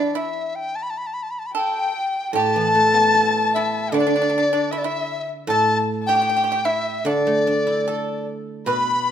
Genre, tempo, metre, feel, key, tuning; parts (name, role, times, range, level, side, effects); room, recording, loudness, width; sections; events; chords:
chinese traditional, Chinese chamber ensemble; 76 BPM; 2/4; rubato; A shang mode; A4 = 437 Hz
reedy large dizi; melody; 0.0-9.1 s; D5 to B5; -22 LUFS; left 2 dB
pipa; second line; 0.0-9.1 s; D4 to B4; -26 LUFS; right 5 dB
guzheng; accompaniment; 0.0-9.1 s; A2 to A4; -24 LUFS; right 1 dB
dark erhu; second line; 1.5-9.1 s; D5 to B5; -25 LUFS; left 5 dB
moderate recital hall reverb, RT60 1.5 s; -18 LUFS; side -9 dB against mid
0.0-2.4 A section; 2.4-9.1 B section